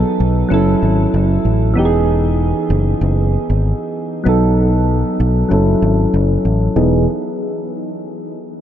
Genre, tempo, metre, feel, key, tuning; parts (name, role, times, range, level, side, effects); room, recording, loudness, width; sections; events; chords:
afrobeats; 96 BPM; 4/4; swing 55% on 16ths; E major; A4 = 440 Hz
soft electric-piano-like synth keys; accompaniment; 0.0-7.1 s; E3 to A4; -16 LUFS; equal; chorus, low-pass filter
fingered electric bass; bass; 0.0-7.1 s; E1 to B1; -15 LUFS; equal
moderate huge ambient reverb, RT60 7.7 s; dreamy mix soaked in reverb; -13 LUFS; side -10 dB against mid
0.0-6.8 A section; 6.8-8.6 B section
filter sweep on synth keys 0.0-6.8
0.0 B7; 0.5 F#m7; 1.8 Emaj7; 4.3 B7; 5.5 F#m7; 6.8 Emaj7